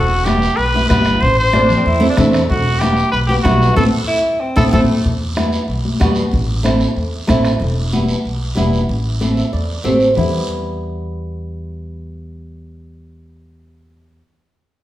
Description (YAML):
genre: latin, cumbia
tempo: 188 BPM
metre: 4/4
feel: straight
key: E minor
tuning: A4 = 439 Hz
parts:
  - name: clear trumpet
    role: melody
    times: 0.0-4.8 s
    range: F#4 to C5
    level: -17 LUFS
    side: equal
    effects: none
  - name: upright bass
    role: bass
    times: 0.0-14.2 s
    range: E1 to E2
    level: -20 LUFS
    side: equal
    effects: none
  - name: flamenco guitar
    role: accompaniment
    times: 0.2-14.2 s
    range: G3 to E5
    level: -19 LUFS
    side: right 1 dB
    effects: none
  - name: bombo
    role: percussion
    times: 0.3-7.6 s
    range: none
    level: -21 LUFS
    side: equal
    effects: none
  - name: congas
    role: percussion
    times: 0.3-10.2 s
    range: none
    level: -20 LUFS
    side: left 2 dB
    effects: none
  - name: guiro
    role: percussion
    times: 0.3-10.2 s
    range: none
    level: -30 LUFS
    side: right 3 dB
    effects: none
  - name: warm tenor saxophone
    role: second line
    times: 1.5-5.0 s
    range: A3 to E4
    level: -20 LUFS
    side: equal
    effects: none
room: wet large studio reverb, RT60 1.3 s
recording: heard from further back in the room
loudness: -13 LUFS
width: side -14 dB against mid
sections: 0.0-5.0 A section; 5.0-10.2 B section; 10.2-12.7 C section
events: band accent 3.8-5.0; nylon-string guitar fill 9.2-10.2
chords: 0.0 Em; 1.2 Am; 2.5 Em; 3.8 Am; 5.0 Em; 6.3 Am; 7.6 Em; 8.9 Am; 10.2 Em